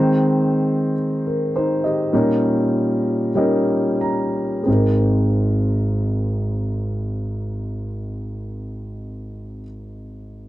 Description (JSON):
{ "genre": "pop", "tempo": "44-57 BPM", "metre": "4/4", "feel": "straight", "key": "Ab major", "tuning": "A4 = 439 Hz", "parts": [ { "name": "warm concert grand piano", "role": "accompaniment", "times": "0.0-10.5 s", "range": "Ab1 to Bb5", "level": "-18 LUFS", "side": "equal", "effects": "none" } ], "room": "moderate booth ambience, RT60 0.2 s", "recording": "dry, close 1970s-style studio recording", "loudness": "-18 LUFS", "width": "side -15 dB against mid", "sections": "0.0-4.7 A section; 4.7-10.1 B section", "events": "slowing down 0.0-4.7; grand piano fill 2.7-4.7", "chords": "0.0 Ab/Eb; 2.1 Eb7; 4.7 Abadd9", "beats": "0.98 2.12 3.35 | 4.67 6.02 7.36 8.70" }